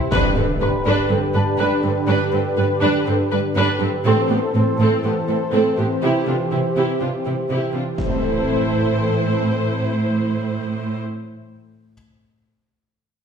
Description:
cinematic; 122 BPM; 4/4; straight; A minor; A4 = 440 Hz
warm analog pad; sustained chords; 0.0-11.0 s; D3 to C5; -22 LUFS; equal; chorus
clear grand piano; texture; 0.0-6.0 s; B4 to E6; -32 LUFS; left 1 dB
warm symphonic viola section; accompaniment; 0.1-11.0 s; B3 to C5; -23 LUFS; right 1 dB
rich studio cello section; bass; 0.1-11.0 s; G2 to C3; -22 LUFS; right 2 dB
impact; sound effects; 0.1-2.1, 8.0-9.9 s; -26 LUFS; left 1 dB
wet recital hall reverb, RT60 1.4 s; recorded in a church or concert hall; -17 LUFS; side -7 dB against mid
0.1-8.0 A section; 8.0-11.9 B section
impact 0.1-2.1, 8.0-9.9
0.1 G; 4.0 Am; 6.0 C; 8.0 Am
| 0.11 0.61 1.10 1.59 | 2.08 2.57 3.06 3.56 | 4.05 4.54 5.03 5.52 | 6.02 6.51 7.00 7.49 | 7.98 8.47 8.97 9.46 | 9.95 10.44 10.93

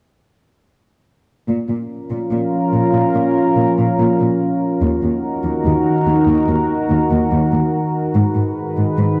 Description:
cinematic; 72 BPM; 4/4; straight; Bb phrygian; A4 = 440 Hz
analog drone; sustained chords; 2.0-9.2 s; Eb3 to Cb5; -19 LUFS; equal; chorus
rich symphonic cello section; bass; 1.5-9.1 s; Eb2 to Bb2; -21 LUFS; equal
wet scoring stage reverb, RT60 2.0 s; dark, warm production; -17 LUFS; mono
1.5-9.2 A section
1.5 Bbm; 4.8 Ebm; 8.2 Abm
| 1.49 2.32 3.16 3.99 | 4.82 5.66 6.49 7.32 | 8.16 8.99

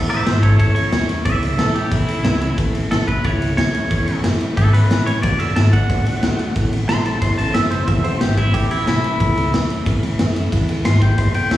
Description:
rockabilly; 181 BPM; 4/4; straight; A major; A4 = 437 Hz
picked steel-string acoustic guitar; accompaniment; 0.0-11.6 s; E2 to F#4; -25 LUFS; left 2 dB; slapback echo
upright bass; bass; 0.0-11.6 s; E1 to A2; -20 LUFS; equal
twangy electric guitar; melody; 0.1-11.6 s; E4 to C6; -22 LUFS; equal; spring reverb, slapback echo, tape echo
raw garage drum kit; drums; 0.1-11.6 s; kick drum, ride cymbal, snare drum; -19 LUFS; equal
light reverb, studio reverb; live gig heard through the venue's PA, recital hall reverb; -15 LUFS; side -14 dB against mid
0.0-11.6 A section
clean electric guitar solo 0.0-11.6
0.0 A; 5.2 D; 6.6 A; 10.5 E
0.26 0.59 0.93 | 1.26 1.59 1.92 2.25 | 2.58 2.92 3.25 3.58 | 3.91 4.24 4.57 4.90 | 5.23 5.56 5.89 6.23 | 6.56 6.89 7.22 7.55 | 7.88 8.21 8.54 8.87 | 9.20 9.53 9.86 10.19 | 10.52 10.85 11.18 11.51

